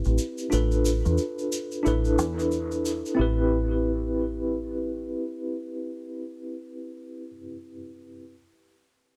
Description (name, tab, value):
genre	trip hop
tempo	90 BPM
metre	4/4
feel	swing 60% on 16ths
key	A minor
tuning	A4 = 440 Hz
part	tine electric piano	accompaniment	0.0-8.4 s	C4 to B4	-30 LUFS	equal	medium tremolo, low-pass filter, tape echo
part	egg shaker	percussion	0.0-3.2 s	none	-40 LUFS	equal	none
part	deep dub fingered electric bass	bass	0.1-5.1 s	A1 to E2	-29 LUFS	equal	none
room	small room ambience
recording	none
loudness	-27 LUFS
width	mono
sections	0.0-3.2 A section; 3.2-5.8 B section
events	filter sweep on tine electric piano 0.0-3.2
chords	0.0 Am7; 0.5 Dm6/A; 1.8 E7sus4/A; 3.2 Am7